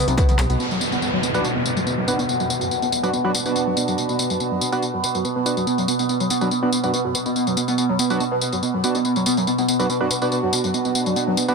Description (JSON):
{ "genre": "driving peak-time techno", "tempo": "142 BPM", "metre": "4/4", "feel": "straight", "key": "B minor", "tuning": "A4 = 444 Hz", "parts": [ { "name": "overdriven synth lead", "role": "riff", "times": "0.0-11.5 s", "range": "C3 to B3", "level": "-22 LUFS", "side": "right 1 dB", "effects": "lush chorus, sidechain pumping, ping-pong delay" }, { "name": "overtone-sweeping drone", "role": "drone", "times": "0.0-11.5 s", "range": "B2 to B3", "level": "-26 LUFS", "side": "equal", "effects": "chorus, built-in reverb, sidechain pumping" }, { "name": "dark detuned saw bass", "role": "bass", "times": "0.1-0.6 s", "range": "B1", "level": "-22 LUFS", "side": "equal", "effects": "sidechain pumping" }, { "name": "techno drum kit", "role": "drums", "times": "0.1-11.5 s", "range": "handclaps, hi-hat, tambourine, toms", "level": "-26 LUFS", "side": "left 2 dB", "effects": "sidechain pumping on hats, sidechain pumping on perc, sidechain pumping on toms" }, { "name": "downlifter and riser", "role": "sound effects", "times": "0.6-4.0, 11.3-11.5 s", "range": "none", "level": "-27 LUFS", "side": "left 1 dB", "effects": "none" }, { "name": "sync-sweep polysynth", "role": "stabs", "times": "1.3-11.5 s", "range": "B3 to F#4", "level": "-25 LUFS", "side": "right 3 dB", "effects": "chorus, sidechain pumping, digital delay" } ], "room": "light reverb", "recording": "none", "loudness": "-18 LUFS", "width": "side -4 dB against mid", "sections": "0.6-11.5 A section", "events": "drum fill 0.4; band accent 0.4", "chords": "0.0 N.C.; 0.6 Bm" }